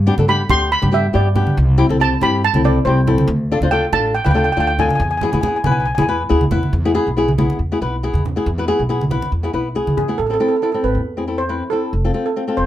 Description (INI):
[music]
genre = calypso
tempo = 139 BPM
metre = 4/4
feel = swing 54% on 16ths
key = unclear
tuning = A4 = 441 Hz
[part]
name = upright bass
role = bass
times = 0.0-12.7 s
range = E1 to G2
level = -19 LUFS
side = equal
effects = none
[part]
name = flamenco guitar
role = accompaniment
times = 0.1-12.7 s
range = B3 to C5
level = -19 LUFS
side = left 3 dB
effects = none
[part]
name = congas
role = percussion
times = 0.2-10.1 s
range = none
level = -21 LUFS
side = right 2 dB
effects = none
[part]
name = steel pan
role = melody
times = 0.3-6.2, 10.0-12.7 s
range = G#4 to C6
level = -19 LUFS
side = right 2 dB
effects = slapback echo
[sound]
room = moderate studio ambience, RT60 0.5 s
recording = none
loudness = -15 LUFS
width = side -12 dB against mid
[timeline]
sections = 0.0-6.7 A section; 6.7-10.2 B section; 10.2-12.7 C section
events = none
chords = 0.0 G; 1.6 C6; 3.3 Dm; 5.0 E; 10.2 Amadd9; 11.9 F